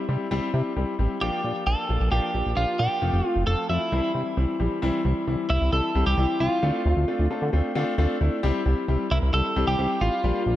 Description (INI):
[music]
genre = synth-pop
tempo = 133 BPM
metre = 4/4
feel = straight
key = unclear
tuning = A4 = 442 Hz
[part]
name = warm concert grand piano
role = accompaniment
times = 0.0-10.6 s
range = E3 to A5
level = -27 LUFS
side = left 3 dB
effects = none
[part]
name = chorused synth bass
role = bass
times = 0.1-10.5 s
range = F1 to D3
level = -23 LUFS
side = equal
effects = none
[part]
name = twelve-string electric guitar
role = melody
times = 1.2-10.6 s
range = E4 to A4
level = -27 LUFS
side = right 1 dB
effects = spring reverb, digital delay
[sound]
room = light reverb, studio ambience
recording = dark, warm production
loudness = -22 LUFS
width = side -13 dB against mid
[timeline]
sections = 0.0-4.8 A section; 4.8-10.6 B section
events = grand piano fill 7.1-8.4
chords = 0.0 C; 1.2 Bb; 3.0 F; 3.9 C; 6.6 Dm7; 8.4 C